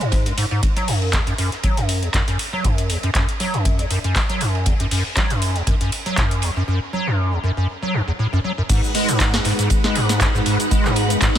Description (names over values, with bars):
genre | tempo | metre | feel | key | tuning
acid house | 119 BPM | 4/4 | swing 55% on 16ths | G# minor | A4 = 440 Hz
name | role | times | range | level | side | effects
acid bass, square | riff | 0.0-11.4 s | E2 to G#3 | -20 LUFS | equal | overdrive, ensemble chorus, ping-pong delay
booming analog drum machine | drums | 0.0-11.4 s | crash cymbal, handclaps, hi-hat, shaker, snare drum | -24 LUFS | equal | none
damped 70s drum kit | drums | 0.0-11.3 s | hi-hat, ride cymbal, snare drum | -32 LUFS | right 3 dB | sidechain pumping on cymbals, high-pass filter on cymbals, sidechain pumping on hats, high-pass filter on hats, high-pass filter on snare, high-pass filter on room
electronic kick drum | drums | 0.1-11.3 s | none | -21 LUFS | equal | none
string machine, full ensemble | sustained chords | 8.7-11.4 s | G#3 to F#5 | -22 LUFS | equal | ensemble chorus, sidechain pumping
room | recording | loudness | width
light reverb, small room ambience | none | -17 LUFS | side -10 dB against mid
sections
0.0-8.7 A section; 8.7-11.4 B section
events
drop 8.7-11.4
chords
0.0 N.C.; 8.7 G#m7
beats
0.12 | 0.63 1.13 1.64 2.14 | 2.65 3.15 3.65 4.16 | 4.66 5.17 5.67 6.17 | 6.68 7.18 7.69 8.19 | 8.70 9.20 9.70 10.21 | 10.71 11.22